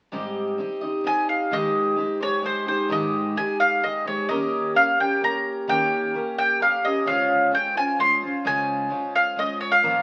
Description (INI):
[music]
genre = acoustic folk duo or small band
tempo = 130 BPM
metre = 3/4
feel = straight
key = Ab major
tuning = A4 = 443 Hz
[part]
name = picked twelve-string acoustic guitar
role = accompaniment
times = 0.1-10.0 s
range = Ab2 to Eb5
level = -28 LUFS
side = equal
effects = none
[part]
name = mandolin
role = melody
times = 1.1-10.0 s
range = C5 to C6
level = -24 LUFS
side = equal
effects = none
[sound]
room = wet large studio reverb, RT60 1.0 s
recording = very old 78 rpm record, vinyl crackle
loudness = -23 LUFS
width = mono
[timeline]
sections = 0.1-1.5 A section; 1.5-10.0 B section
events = none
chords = 0.1 Abmaj7; 4.3 Eb7; 7.1 Dbmaj7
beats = | 0.13 0.59 1.05 | 1.52 1.98 2.44 | 2.90 3.37 3.83 | 4.29 4.75 5.21 | 5.67 6.14 6.60 | 7.06 7.52 7.98 | 8.44 8.90 9.37 | 9.83